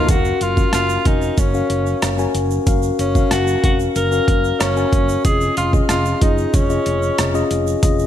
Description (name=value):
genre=1980s-style pop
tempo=93 BPM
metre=4/4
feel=straight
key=F# major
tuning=A4 = 440 Hz
part: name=clear alto saxophone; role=melody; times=0.0-7.5 s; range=C#4 to A#4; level=-22 LUFS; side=right 1 dB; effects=digital delay
part: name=mellow tine electric piano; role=accompaniment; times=0.0-8.1 s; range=B3 to G#5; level=-20 LUFS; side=left 4 dB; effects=none
part: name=mellow fretless electric bass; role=bass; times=0.1-8.1 s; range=E#1 to F#1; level=-22 LUFS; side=right 1 dB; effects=none
part: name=boom bap sampler-style drum kit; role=drums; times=0.1-8.0 s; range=hi-hat, kick drum, rim click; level=-18 LUFS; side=right 1 dB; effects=overdrive, gated reverb
part: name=egg shaker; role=percussion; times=0.1-8.1 s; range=none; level=-36 LUFS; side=right 12 dB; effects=none
room=light reverb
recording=none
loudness=-15 LUFS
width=side -10 dB against mid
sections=0.1-8.1 A section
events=none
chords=0.1 F#maj7; 5.2 C#add9/E#